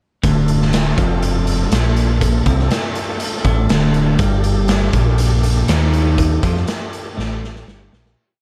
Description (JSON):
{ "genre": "psychedelic rock", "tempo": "121 BPM", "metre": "4/4", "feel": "straight", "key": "D minor", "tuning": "A4 = 441 Hz", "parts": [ { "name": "tonewheel organ", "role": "sustained chords", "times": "0.2-8.1 s", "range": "A3 to A4", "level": "-30 LUFS", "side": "equal", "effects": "chorus vibrato, fast rotary speaker" }, { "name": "twelve-string electric guitar", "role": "riff", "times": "0.2-8.2 s", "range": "D2 to F3", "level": "-20 LUFS", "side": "equal", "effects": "flanger" }, { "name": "saturated sub bass", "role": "bass", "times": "0.2-8.2 s", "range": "D1 to F2", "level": "-21 LUFS", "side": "equal", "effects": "none" }, { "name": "raw garage drum kit", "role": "drums", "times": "0.2-8.2 s", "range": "hi-hat, kick drum, snare drum", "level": "-22 LUFS", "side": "equal", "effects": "none" } ], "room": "light reverb", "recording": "none", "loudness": "-16 LUFS", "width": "mono", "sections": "0.2-8.2 groove", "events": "fade-out 6.2-8.2; drum fill 7.2-8.2", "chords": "0.2 Dm; 4.2 Gsus2" }